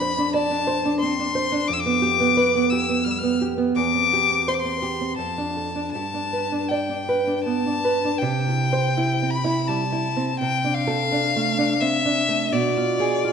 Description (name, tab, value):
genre	romantic duo for violin and classical guitar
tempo	78-90 BPM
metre	3/4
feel	rubato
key	C major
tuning	A4 = 440 Hz
part	clear violin	melody	0.0-13.3 s	D5 to F6	-23 LUFS	left 6 dB	none
part	nylon-string guitar	accompaniment	0.0-13.3 s	E2 to D5	-22 LUFS	right 2 dB	none
room	wet scoring stage reverb, RT60 1.5 s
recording	nothing above 11.0 kHz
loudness	-20 LUFS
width	side -7 dB against mid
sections	0.0-8.2 A section; 8.2-13.3 B section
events	none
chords	0.0 Dm7/F; 1.7 G7/F; 3.8 C/E; 5.2 Dm/F; 5.9 G; 8.2 C; 10.4 Dm7/C; 12.5 Bdim7